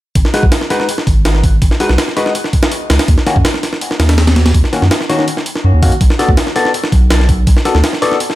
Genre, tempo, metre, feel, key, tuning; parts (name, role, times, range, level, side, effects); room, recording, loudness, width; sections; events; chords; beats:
drum and bass, jungle; 164 BPM; 4/4; straight; G# minor; A4 = 440 Hz
saturated sub bass; bass; 0.2-7.8 s; G#1 to F#2; -11 LUFS; equal
breakbeat sampler-style drum kit; drums; 0.2-8.4 s; hi-hat, kick drum, snare drum; -13 LUFS; equal; studio reverb
barky tine electric piano; stabs; 0.3-8.2 s; D#3 to D5; -17 LUFS; left 2 dB; phaser, dub echo
digital ambience; -10 LUFS; side -16 dB against mid
0.2-8.4 A section
0.2 G#m7; 3.1 D#m7; 6.0 Bm7
| 0.15 0.52 0.89 1.25 | 1.62 1.98 2.35 2.72 | 3.08 3.45 3.81 4.18 | 4.54 4.91 5.28 5.64 | 6.01 6.38 6.74 7.11 | 7.47 7.84 8.20